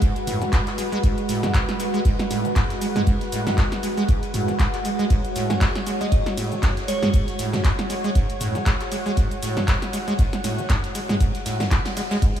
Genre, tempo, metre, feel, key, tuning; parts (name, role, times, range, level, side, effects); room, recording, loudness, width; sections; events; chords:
acid house; 118 BPM; 4/4; swing 56% on 16ths; G# phrygian; A4 = 437 Hz
warm analog pad; sustained chords; 0.0-12.4 s; G#3 to C#5; -29 LUFS; right 3 dB; chorus, sidechain pumping
deep acid bass; riff; 0.0-12.3 s; G#2 to G#3; -26 LUFS; equal; tube saturation, lush chorus, sidechain pumping, tape echo
electronic kick drum; drums; 0.0-12.3 s; -21 LUFS; equal
punchy analog drum machine; drums; 0.0-12.4 s; handclaps, hi-hat, ride cymbal, shaker, snare drum, toms; -27 LUFS; equal
soft brush drum kit; drums; 0.0-12.4 s; hi-hat, ride cymbal, snare drum; -38 LUFS; equal; high-pass filter on cymbals, high-pass filter on hats, high-pass filter on snare, high-pass filter on room
deep dark ambient pad; texture; 0.0-12.4 s; F#5; -32 LUFS; left 2 dB; chorus, built-in reverb, sidechain pumping
glassy synth bell; melody; 5.5-7.4 s; C#5 to G#5; -31 LUFS; right 2 dB; chorus, phaser, tape echo
light reverb, digital ambience; small room ambience; -20 LUFS; side -10 dB against mid
0.0-12.4 A section
0.0 G#m7